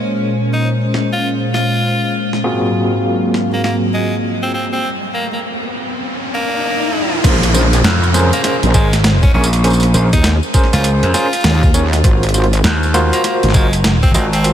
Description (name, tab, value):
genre	glitch hop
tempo	100 BPM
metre	4/4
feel	swing 63% on 16ths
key	Bb minor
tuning	A4 = 442 Hz
part	warm analog pad	sustained chords	0.0-4.8 s	Ab2 to F5	-18 LUFS	equal	chorus, sidechain pumping
part	overdriven tine electric piano	stabs	0.0-14.5 s	Bb3 to Eb5	-20 LUFS	right 1 dB	medium tremolo, sidechain pumping, tape echo
part	raspy tenor saxophone	melody	0.5-14.5 s	Ab3 to F4	-22 LUFS	equal	tape echo
part	boom bap sampler-style drum kit	drums	0.9-14.5 s	crash cymbal, hi-hat, snare drum, tambourine	-19 LUFS	right 1 dB	overdrive
part	riser and downlifter	sound effects	4.3-12.0 s	none	-22 LUFS	left 1 dB	none
part	wobble bass	bass	7.2-13.5 s	Ab1 to Eb2	-13 LUFS	equal	chorus
part	electronic kick drum	drums	7.2-14.1 s	none	-13 LUFS	equal	overdrive
part	gritty slap bass	bass	7.8-14.5 s	Gb1 to F2	-13 LUFS	equal	overdrive
room	moderate huge ambient reverb, RT60 6.3 s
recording	dreamy mix soaked in reverb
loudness	-12 LUFS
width	side -10 dB against mid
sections	0.0-7.2 A section; 7.2-14.5 B section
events	filter sweep on tine electric piano 0.0-7.2; filter sweep on analog synth pad 0.0-7.2; riser 4.3-7.2; break 4.8-7.2; drop 7.2-14.5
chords	0.0 Bbm9; 2.4 Ab13; 7.2 Bbm9; 12.0 Ab13